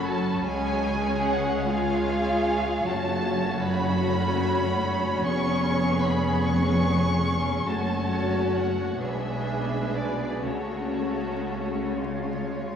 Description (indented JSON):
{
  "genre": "classical, slow romantic movement for string orchestra",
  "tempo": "39-53 BPM (dotted quarters)",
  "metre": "6/8",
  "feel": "rubato",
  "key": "F# minor",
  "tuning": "A4 = 440 Hz",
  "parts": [
    { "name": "rich chamber violin section", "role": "melody", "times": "0.0-12.0 s", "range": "C#5 to C#6", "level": "-31 LUFS", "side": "equal", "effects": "none" },
    { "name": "warm studio violin section", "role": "second line", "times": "0.0-12.8 s", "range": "E#4 to C#5", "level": "-29 LUFS", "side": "left 1 dB", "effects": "none" },
    { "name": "clear chamber viola section", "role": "accompaniment", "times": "0.0-12.8 s", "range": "F#3 to E#4", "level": "-29 LUFS", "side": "left 1 dB", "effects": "none" },
    { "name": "rich chamber double bass section", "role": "bass", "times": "0.0-12.8 s", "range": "E#1 to C#2", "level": "-32 LUFS", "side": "right 3 dB", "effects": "none" },
    { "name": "rich symphonic cello section", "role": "bass", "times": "0.0-12.8 s", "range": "C#2 to C#3", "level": "-30 LUFS", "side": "equal", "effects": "none" }
  ],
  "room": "wet cathedral reverb, RT60 5.6 s",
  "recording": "in a vast, echoing space, vinyl crackle, studio ambience",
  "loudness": "-23 LUFS",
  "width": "side -8 dB against mid",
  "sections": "0.0-12.8 A section",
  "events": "none",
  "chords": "0.5 C#; 2.9 F#m; 5.3 C#7/E#; 7.7 F#m; 9.0 G#dim/B; 10.4 F#m/C#; 12.0 C#"
}